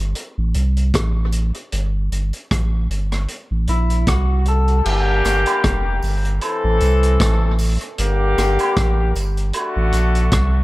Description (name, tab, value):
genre	dub reggae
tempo	77 BPM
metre	4/4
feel	swing 56% on 16ths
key	G dorian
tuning	A4 = 441 Hz
part	warm sub bass	bass	0.0-10.6 s	F1 to C2	-18 LUFS	equal	none
part	vintage drum kit	drums	0.2-10.5 s	crash cymbal, hi-hat, kick drum, rim click	-22 LUFS	equal	none
part	electric guitar at the edge of break-up	melody	3.7-4.8 s	E4 to A4	-25 LUFS	left 2 dB	harmonic tremolo, dub echo
part	clear horn section	second line	4.9-10.6 s	D3 to A4	-20 LUFS	left 2 dB	high-pass filter, dub echo
part	tambourine and woodblock	percussion	5.2-10.1 s	none	-28 LUFS	right 3 dB	high-pass filter on perc, dub echo
room	light reverb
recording	none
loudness	-16 LUFS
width	side -19 dB against mid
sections	0.0-4.9 A section; 4.9-10.6 B section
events	none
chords	0.2 Am; 1.7 Gsus2; 3.3 Am6; 4.9 Gm; 6.4 Am; 8.0 Gm; 9.5 D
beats	0.16 0.94 | 1.73 2.51 3.29 4.07 | 4.86 5.64 6.42 7.20 | 7.98 8.76 9.54 10.32